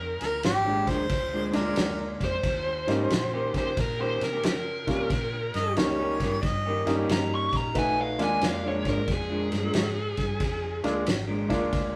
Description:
electric blues shuffle; 90 BPM; 4/4; swing 66% on 8ths; Bb mixolydian; A4 = 439 Hz
dark smooth lead guitar; melody; 0.0-11.1 s; Ab4 to Db6; -32 LUFS; equal; overdrive
electric guitar through a small old amp; riff; 0.0-11.8 s; Bb2 to G4; -34 LUFS; equal
vintage muted fingered electric bass; bass; 0.0-12.0 s; Ab1 to Db3; -37 LUFS; equal
clear harmonica; second line; 0.2-7.0 s; G4 to Eb5; -32 LUFS; equal
natural country drum kit; drums; 0.2-11.9 s; kick drum, ride cymbal, snare drum; -33 LUFS; equal
bright upright piano; accompaniment; 1.5-12.0 s; G3 to Gb4; -31 LUFS; equal
wet studio ambience, RT60 0.5 s; rough rehearsal-room recording; -27 LUFS; mono
0.0-12.0 A section
0.0 Bb7; 2.4 Eb7; 7.8 Bb7

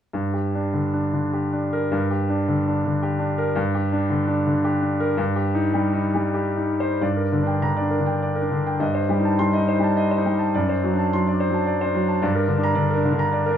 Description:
classical, romantic character piece for solo piano; 86-113 BPM; 3/4; rubato; G minor; A4 = 443 Hz
bright concert grand piano; solo; 0.1-13.6 s; F#2 to C6; -20 LUFS; equal
moderate large studio reverb, RT60 1.3 s; minimal, uncompressed stereo recording; -20 LUFS; side -9 dB against mid
0.1-7.0 A section; 7.0-13.6 B section
0.1 Gm; 5.2 Cm/G; 7.0 Gm; 8.8 Am7b5/G; 10.6 D7/F#; 12.2 Gm

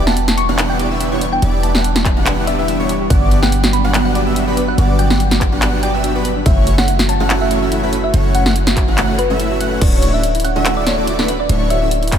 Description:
future bass; 143 BPM; 4/4; swing 54% on 16ths, half-time; D major; A4 = 440 Hz
airy breathy pad; sustained chords; 0.0-9.8 s; E3 to F#4; -24 LUFS; left 2 dB; chorus, sidechain pumping
airy dreamy lead; arpeggios; 0.0-11.9 s; B4 to F#5; -27 LUFS; left 1 dB; chorus, vintage 12-bit sampler grit, sidechain pumping, ping-pong delay
dense compressed supersaw; riff; 0.0-11.9 s; A3 to F#5; -21 LUFS; right 1 dB; sidechain pumping, ping-pong delay
warm 808-style bass; bass; 0.0-12.2 s; D1 to G1; -18 LUFS; equal; sidechain pumping
thumb-piano-like synth pluck; melody; 0.1-11.9 s; B4 to C#6; -22 LUFS; left 1 dB; phaser, analog chorus, sidechain pumping, diffuse ambient delay
soft round pluck; arpeggios; 0.1-12.2 s; B3 to E5; -26 LUFS; right 5 dB; chorus, sidechain pumping, ping-pong delay
big-room dance drum kit; drums; 0.1-12.2 s; crash cymbal, handclaps, hi-hat, ride cymbal, snare drum; -20 LUFS; equal
electronic kick drum; drums; 2.1-12.2 s; -15 LUFS; equal
light reverb; -13 LUFS; side -9 dB against mid
0.0-9.8 A section; 9.8-12.2 A section
drop 0.0-9.8, 9.8-12.2; break 9.4-9.8
0.0 Em7; 3.1 Gmaj7; 6.5 F#m7; 9.8 Dmaj9

